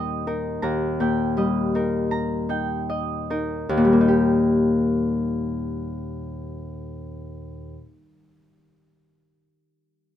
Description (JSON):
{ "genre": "classical, solo harp piece", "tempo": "37-42 BPM", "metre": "4/4", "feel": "rubato", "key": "Eb major", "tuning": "A4 = 438 Hz", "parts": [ { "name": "Celtic harp", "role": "solo", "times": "0.0-8.1 s", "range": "Eb2 to Bb5", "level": "-21 LUFS", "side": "left 2 dB", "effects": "none" } ], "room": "little or no reverb", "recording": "close, detailed microphones", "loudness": "-20 LUFS", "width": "side -10 dB against mid", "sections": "0.0-3.7 A section; 3.7-9.8 B section", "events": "slowing down 0.0-3.7", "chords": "0.0 Eb", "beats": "0.65 2.12 | 3.70 5.23 6.75" }